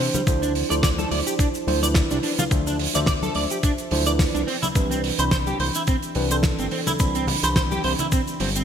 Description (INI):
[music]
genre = nu-disco, nu disco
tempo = 107 BPM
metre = 4/4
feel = swing 55% on 16ths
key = D dorian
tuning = A4 = 440 Hz
[part]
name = mellow tine electric piano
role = accompaniment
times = 0.0-8.4 s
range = E3 to B5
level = -26 LUFS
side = right 1 dB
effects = wide subtle chorus, digital delay
[part]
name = electric guitar at the edge of break-up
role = riff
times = 0.0-8.6 s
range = G3 to D5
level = -27 LUFS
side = right 3 dB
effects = analog chorus, digital delay
[part]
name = damped 70s drum kit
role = drums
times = 0.1-8.6 s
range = hi-hat, shaker, snare drum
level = -27 LUFS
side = right 1 dB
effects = studio ambience, gated reverb
[part]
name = congas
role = percussion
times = 0.1-8.5 s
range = none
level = -32 LUFS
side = left 3 dB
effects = none
[part]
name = fat analog bass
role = bass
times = 0.3-8.6 s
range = G1 to D2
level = -26 LUFS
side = equal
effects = none
[part]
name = electronic kick drum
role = drums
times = 0.3-8.2 s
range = none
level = -22 LUFS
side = left 1 dB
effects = studio ambience
[sound]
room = moderate plate reverb, RT60 2.3 s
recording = bright 1980s-style digital production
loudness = -20 LUFS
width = side -8 dB against mid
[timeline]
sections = 0.0-8.6 A section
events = none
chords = 0.3 Dm9; 4.5 Cmaj9